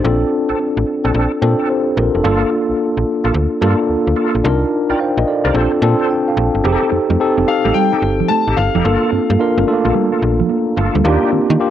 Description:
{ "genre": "R&B", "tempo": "109 BPM", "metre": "4/4", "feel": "swing 65% on 16ths", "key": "unclear", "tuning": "A4 = 440 Hz", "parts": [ { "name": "tine electric piano", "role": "accompaniment", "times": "0.0-11.7 s", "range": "A3 to A5", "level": "-15 LUFS", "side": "equal", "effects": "medium stereo tremolo, cassette tape" }, { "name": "slap-like FM bass", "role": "bass", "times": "0.0-11.6 s", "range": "F1 to Eb3", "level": "-17 LUFS", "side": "equal", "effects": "none" }, { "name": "bright tonewheel organ", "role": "stabs", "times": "0.5-11.3 s", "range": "Bb3 to D5", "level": "-24 LUFS", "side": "equal", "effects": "overdrive, chorus vibrato, fast rotary speaker, cassette tape, analog delay" }, { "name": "mellow electric guitar", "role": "riff", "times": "6.8-11.6 s", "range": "F3 to C4", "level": "-20 LUFS", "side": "right 9 dB", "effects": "lush chorus, cassette tape" }, { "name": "clear concert grand piano", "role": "melody", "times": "7.5-9.6 s", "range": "F5 to A5", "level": "-20 LUFS", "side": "left 8 dB", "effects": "cassette tape" } ], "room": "light reverb, digital ambience", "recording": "home recording on cassette", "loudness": "-13 LUFS", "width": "side -11 dB against mid", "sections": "0.0-6.6 A section; 6.6-11.7 B section", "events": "tine electric piano fill 5.5-6.6", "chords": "0.0 Bbmaj9; 2.2 Gm9; 4.4 Cm11; 5.5 Bbmaj9; 6.6 F9; 8.8 Gm9; 11.0 Ebmaj7", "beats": "| 0.04 0.59 1.14 1.69 | 2.24 2.79 3.34 3.89 | 4.44 4.99 5.54 6.09 | 6.64 7.20 7.75 8.30 | 8.85 9.40 9.95 10.50 | 11.05 11.60" }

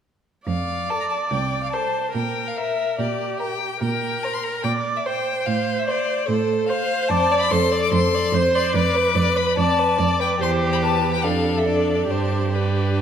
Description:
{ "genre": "quick classical-period movement for string quartet", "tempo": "145 BPM", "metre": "4/4", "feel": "rubato", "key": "F major", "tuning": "A4 = 441 Hz", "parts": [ { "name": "clear violin", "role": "melody", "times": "0.5-13.0 s", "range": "B4 to D6", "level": "-25 LUFS", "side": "left 8 dB", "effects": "none" }, { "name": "clear viola", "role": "accompaniment", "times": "0.5-13.0 s", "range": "G4 to D5", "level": "-24 LUFS", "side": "right 2 dB", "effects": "none" }, { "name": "rich cello", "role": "bass", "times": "0.5-13.0 s", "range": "C2 to Bb2", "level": "-24 LUFS", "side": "right 3 dB", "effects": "none" }, { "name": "rich violin", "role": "second line", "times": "0.9-13.0 s", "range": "D4 to D5", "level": "-26 LUFS", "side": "left 1 dB", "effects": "none" } ], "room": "wet concert hall reverb, RT60 2.2 s", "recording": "none", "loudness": "-19 LUFS", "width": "side -8 dB against mid", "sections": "0.5-13.0 A section", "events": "none", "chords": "0.5 F; 2.2 Gm/Bb; 3.8 C5/Bb; 5.5 F/A; 7.1 Dm7/F; 8.7 G9/F (rootless); 10.4 C/E; 11.2 Dm/F; 12.1 G", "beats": "| 0.47 0.90 1.31 1.73 | 2.15 2.57 2.99 3.40 | 3.81 4.23 4.64 5.05 | 5.46 5.87 6.28 6.69 | 7.10 7.51 7.92 8.33 | 8.74 9.16 9.57 9.99 | 10.40 10.82 11.24 11.66 | 12.10 12.53 12.96" }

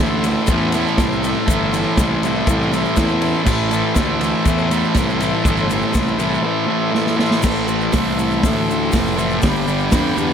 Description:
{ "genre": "garage rock duo or trio", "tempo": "121 BPM", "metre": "4/4", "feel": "straight", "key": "A minor", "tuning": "A4 = 440 Hz", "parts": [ { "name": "overdriven combo organ", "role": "sustained chords", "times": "0.0-10.3 s", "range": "D4 to C5", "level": "-26 LUFS", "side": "left 2 dB", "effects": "none" }, { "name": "thick fuzz guitar", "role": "riff", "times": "0.0-10.3 s", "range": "G2 to A3", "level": "-18 LUFS", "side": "equal", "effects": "distortion" }, { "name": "fuzz fingered electric bass", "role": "bass", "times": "0.0-10.3 s", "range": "F1 to F2", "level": "-24 LUFS", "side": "equal", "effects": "overdrive" }, { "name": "vintage drum kit", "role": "drums", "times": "0.2-10.0 s", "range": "crash cymbal, hi-hat, kick drum, ride cymbal, snare drum", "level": "-21 LUFS", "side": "equal", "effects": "none" }, { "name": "egg shaker", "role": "percussion", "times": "0.2-10.3 s", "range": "none", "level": "-34 LUFS", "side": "left 15 dB", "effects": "none" } ], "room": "moderate spring reverb, RT60 2.5 s", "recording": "none", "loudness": "-15 LUFS", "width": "side -8 dB against mid", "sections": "0.0-7.4 A section; 7.4-10.3 B section", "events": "drum fill 6.9-7.4", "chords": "0.0 Am; 9.4 G", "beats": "0.49 0.98 | 1.48 1.98 2.47 2.97 | 3.47 3.96 4.46 4.96 | 5.45 5.95 6.45 6.94 | 7.44 7.94 8.43 8.93 | 9.43 9.92" }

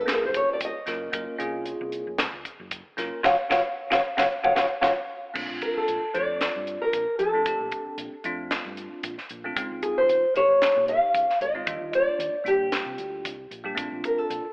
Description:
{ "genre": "electric jazz fusion", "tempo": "114 BPM", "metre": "4/4", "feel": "swing 55% on 16ths", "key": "unclear", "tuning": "A4 = 440 Hz", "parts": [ { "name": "nylon-string guitar", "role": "melody", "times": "0.0-14.5 s", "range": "G4 to Gb5", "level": "-23 LUFS", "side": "equal", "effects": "slapback echo" }, { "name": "bell-like tine electric piano", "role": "accompaniment", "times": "0.0-14.4 s", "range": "C3 to Bb4", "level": "-33 LUFS", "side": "equal", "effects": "fast stereo tremolo, phaser" }, { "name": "hollow-body short-scale fingered electric bass", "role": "bass", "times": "0.0-14.5 s", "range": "F1 to C3", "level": "-43 LUFS", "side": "equal", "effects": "none" }, { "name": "crisp fusion drum kit", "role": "drums", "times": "0.1-14.4 s", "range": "crash cymbal, hi-hat, kick drum, snare drum", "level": "-30 LUFS", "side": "equal", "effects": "none" } ], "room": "moderate echo chamber reverb, RT60 2.2 s", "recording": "telephone sound", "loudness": "-23 LUFS", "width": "side -25 dB against mid", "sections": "0.0-5.3 A section; 5.3-14.5 B section", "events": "nylon-string guitar solo 0.0-5.3; band accent 3.2-5.3; drum fill 4.3-5.3", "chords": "0.1 Gbmaj9; 5.3 Bbmaj9; 9.6 Dbmaj9; 11.7 Ebmaj9; 13.8 Bbmaj9", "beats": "0.08 0.61 | 1.14 1.66 2.19 2.72 | 3.24 3.77 4.30 4.82 | 5.35 5.88 6.40 6.93 | 7.46 7.99 8.51 9.04 | 9.57 10.09 10.62 11.15 | 11.67 12.20 12.73 13.25 | 13.78 14.31" }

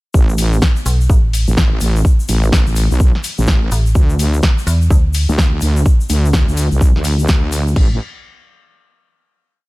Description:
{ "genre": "bass house", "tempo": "126 BPM", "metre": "4/4", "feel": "swing 61% on 16ths", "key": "A minor", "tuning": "A4 = 440 Hz", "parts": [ { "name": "wobble bass", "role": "bass", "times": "0.1-8.0 s", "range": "A1 to D2", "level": "-15 LUFS", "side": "equal", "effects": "chorus, tube saturation, sidechain pumping" }, { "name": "electronic kick drum", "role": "drums", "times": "0.1-7.9 s", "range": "none", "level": "-12 LUFS", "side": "equal", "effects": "studio reverb" }, { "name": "egg shaker", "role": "percussion", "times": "0.1-7.7 s", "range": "none", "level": "-29 LUFS", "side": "left 4 dB", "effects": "none" }, { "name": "house drum kit", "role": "drums", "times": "0.4-7.9 s", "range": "crash cymbal, hi-hat, snare drum", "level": "-22 LUFS", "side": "equal", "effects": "studio reverb" }, { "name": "metallic FM bass", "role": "bass", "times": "0.9-5.3 s", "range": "A1 to E2", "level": "-14 LUFS", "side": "equal", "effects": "sidechain pumping" } ], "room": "little or no reverb", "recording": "none", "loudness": "-12 LUFS", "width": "side -21 dB against mid", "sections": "0.1-7.8 drop; 7.8-9.7 final note", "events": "drop 0.1-7.8", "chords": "none", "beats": "| 0.14 0.62 1.09 1.57 | 2.05 2.52 3.00 3.48 | 3.95 4.43 4.91 5.38 | 5.86 6.33 6.81 7.29 | 7.76" }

